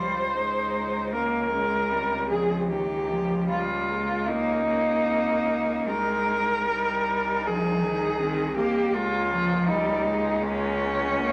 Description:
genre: classical, lyrical piece for cello ensemble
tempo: 72-82 BPM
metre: 4/4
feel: rubato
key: unclear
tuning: A4 = 444 Hz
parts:
  - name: rich cello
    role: melody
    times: 0.0-11.3 s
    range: Db4 to C5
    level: -27 LUFS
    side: equal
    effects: none
  - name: warm cello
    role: second line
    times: 0.0-11.3 s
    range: Bb3 to F4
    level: -40 LUFS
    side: equal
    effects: none
  - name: rich cello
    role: accompaniment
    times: 0.0-11.3 s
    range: Eb3 to Bb3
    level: -31 LUFS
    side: equal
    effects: none
  - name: rich cello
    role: bass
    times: 0.0-11.3 s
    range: C2 to Db2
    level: -37 LUFS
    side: equal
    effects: none
room: wet large studio reverb, RT60 1.2 s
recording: none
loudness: -25 LUFS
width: mono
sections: 0.0-11.3 A section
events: none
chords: 0.0 Dbmaj7; 5.9 Ab/C; 8.9 Bbm7/Db

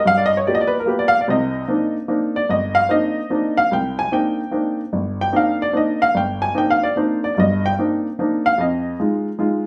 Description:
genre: jazz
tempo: 148 BPM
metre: 3/4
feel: swing 66% on 8ths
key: C minor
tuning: A4 = 439 Hz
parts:
  - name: warm upright piano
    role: solo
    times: 0.0-9.7 s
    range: G1 to Ab5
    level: -19 LUFS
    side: equal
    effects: none
room: wet studio reverb, RT60 0.7 s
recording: band playing live in one room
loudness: -19 LUFS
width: mono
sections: 0.0-3.7 A section; 3.7-9.7 A section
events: upright piano solo 0.0-9.7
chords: 0.1 G7#9; 1.3 Cm9; 8.6 Fm7

